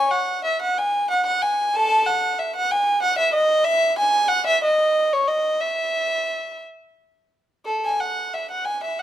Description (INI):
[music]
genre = classical, baroque-style suite movement for unaccompanied violin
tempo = 62 BPM (dotted quarters)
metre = 6/8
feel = rubato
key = E major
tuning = A4 = 438 Hz
[part]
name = warm violin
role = solo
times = 0.0-9.0 s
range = A4 to A5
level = -19 LUFS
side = equal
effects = none
[sound]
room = moderate stone room reverb, RT60 1.1 s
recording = dark, warm production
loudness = -19 LUFS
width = side -11 dB against mid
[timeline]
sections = 0.0-7.7 A section; 7.7-9.0 A section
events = none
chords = none